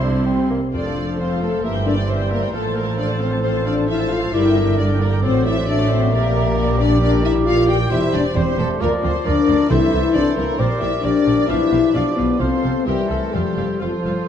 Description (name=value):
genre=quick classical-period movement for symphony orchestra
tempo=134 BPM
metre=4/4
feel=rubato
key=F major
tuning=A4 = 440 Hz
part: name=warm studio violin section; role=melody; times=0.0-14.3 s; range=F4 to C6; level=-32 LUFS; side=left 3 dB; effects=none
part: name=clear clarinet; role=second line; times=0.0-14.3 s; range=G4 to C5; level=-30 LUFS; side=left 1 dB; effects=none
part: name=mellow hollow silver concert flute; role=second line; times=0.0-14.3 s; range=A4 to F5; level=-29 LUFS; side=left 1 dB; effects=none
part: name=rich studio violin section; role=second line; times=0.0-14.3 s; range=F4 to G5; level=-30 LUFS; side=equal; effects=none
part: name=mellow bassoon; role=accompaniment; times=0.0-14.3 s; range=D3 to D4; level=-28 LUFS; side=right 2 dB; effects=none
part: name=rich studio viola section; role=accompaniment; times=0.0-14.1 s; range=G3 to A5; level=-30 LUFS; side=right 1 dB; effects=none
part: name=mellow French horn section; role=sustained chords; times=0.0-14.3 s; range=F3 to G4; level=-20 LUFS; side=left 4 dB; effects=none
part: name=warm trumpet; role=stabs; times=0.0-0.5 s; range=C5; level=-37 LUFS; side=equal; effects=none
part: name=warm studio cello section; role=bass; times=0.0-14.1 s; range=D2 to C3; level=-26 LUFS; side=right 2 dB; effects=none
part: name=warm studio double bass section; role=bass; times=0.0-14.1 s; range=E1 to D2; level=-23 LUFS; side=right 2 dB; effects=none
part: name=timpani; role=percussion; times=0.0-1.4, 9.7-10.3, 13.3-14.0 s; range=F2 to C3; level=-27 LUFS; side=equal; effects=none
part: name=clear cor anglais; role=second line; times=0.7-14.3 s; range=C5 to D5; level=-29 LUFS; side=right 3 dB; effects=none
room=wet recital hall reverb, RT60 1.7 s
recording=dark, warm production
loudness=-16 LUFS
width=side -9 dB against mid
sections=0.7-14.3 A section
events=none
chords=0.0 C; 0.7 F; 1.6 C7/G; 2.5 F/A; 4.3 Gm; 5.2 D7/A; 6.1 Gm/Bb; 7.9 C/E; 8.8 Bb/D; 9.7 Am/C; 10.6 Gm/Bb; 11.5 G7/B; 12.4 F/C; 12.9 C7; 13.3 F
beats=0.27 | 0.74 1.19 1.64 2.09 | 2.54 2.98 3.44 3.90 | 4.35 4.79 5.24 5.69 | 6.14 6.58 7.03 7.47 | 7.91 8.36 8.81 9.26 | 9.70 10.14 10.59 11.04 | 11.49 11.95 12.40 12.87 | 13.34 13.82